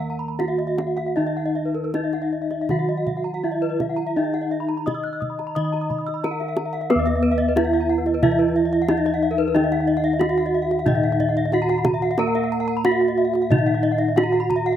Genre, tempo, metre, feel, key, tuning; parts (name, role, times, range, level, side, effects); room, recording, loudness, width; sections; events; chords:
Balinese gamelan; 77-91 BPM; 4/4; straight; Eb pelog; A4 = 440 Hz
gamelan-type bronze metallophone; melody; 0.0-14.8 s; Cb4-20c to Eb5; -22 LUFS; equal; slapback echo
gamelan-type bronze metallophone; accompaniment; 0.0-14.8 s; Eb3 to Eb4; -30 LUFS; right 2 dB
gamelan-type bronze metallophone; arpeggios; 0.0-14.8 s; Bb4-30c to Fb6+20c; -30 LUFS; right 5 dB; slapback echo
gamelan-type bossed gongs; bass; 0.0-14.8 s; Eb2 to Cb5-20c; -28 LUFS; equal
gamelan-type bronze metallophone; arpeggios; 0.1-14.7 s; Cb5-20c to Gb6-30c; -27 LUFS; left 7 dB; slapback echo
kendang; percussion; 0.4-14.7 s; -26 LUFS; right 1 dB
little or no reverb; recorded outdoors, with no room sound; -19 LUFS; side -10 dB against mid
0.0-6.9 A section; 6.9-14.8 B section